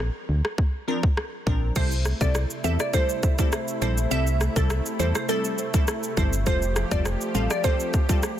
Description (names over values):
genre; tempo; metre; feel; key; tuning
dancehall; 102 BPM; 4/4; straight; unclear; A4 = 440 Hz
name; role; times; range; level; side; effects
solid FM bass; bass; 0.0-7.5 s; F1 to E2; -25 LUFS; equal; none
island pop drum kit; drums; 0.0-8.4 s; crash cymbal, kick drum, rim click, shaker; -25 LUFS; equal; overdrive
wavetable chord stab; accompaniment; 0.9-8.2 s; F3 to Bb4; -30 LUFS; left 1 dB; sidechain pumping
glassy wavetable pluck; melody; 1.8-8.1 s; A4 to F5; -29 LUFS; right 1 dB; chorus, tape echo
lush unison pad; sustained chords; 1.8-8.4 s; C3 to G4; -32 LUFS; equal; chorus, sidechain pumping
room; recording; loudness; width
little or no reverb; dense, heavily limited modern master; -22 LUFS; side -11 dB against mid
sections
0.0-1.8 A section; 1.8-8.4 B section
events
none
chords
0.0 Bbadd9; 1.8 C6; 6.5 Fadd9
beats
0.00 0.58 1.17 | 1.76 2.35 2.94 3.52 | 4.11 4.70 5.29 5.88 | 6.47 7.05 7.64 8.23